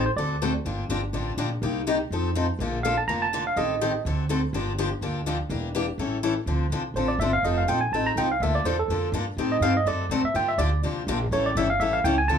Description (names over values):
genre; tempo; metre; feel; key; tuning
acoustic string swing (jazz manouche); 248 BPM; 4/4; swing 56% on 8ths; D minor; A4 = 440 Hz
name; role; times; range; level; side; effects
barky tine electric piano; melody; 0.0-0.5, 2.8-4.0, 7.0-12.4 s; A4 to Bb5; -25 LUFS; right 2 dB; overdrive
picked steel-string acoustic guitar; accompaniment; 0.0-12.4 s; C3 to A4; -27 LUFS; left 4 dB; none
upright bass; bass; 0.0-12.4 s; E1 to A2; -28 LUFS; right 1 dB; none
room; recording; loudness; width
moderate club reverb, RT60 0.5 s; small room ambience; -23 LUFS; side -7 dB against mid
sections
0.0-6.5 A section; 6.5-12.4 B section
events
tine electric piano solo 6.5-12.4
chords
0.2 D7; 0.7 Gm7; 1.6 Cm7; 2.1 F7; 2.6 Bbmaj7; 3.6 Am7b5; 4.0 D7; 4.5 Gm7; 5.5 Em7b5; 6.0 A7; 6.5 Dm7; 7.4 F7; 8.4 Bbmaj7; 9.4 Am7b5; 9.9 D7; 10.3 Gm7; 11.3 A7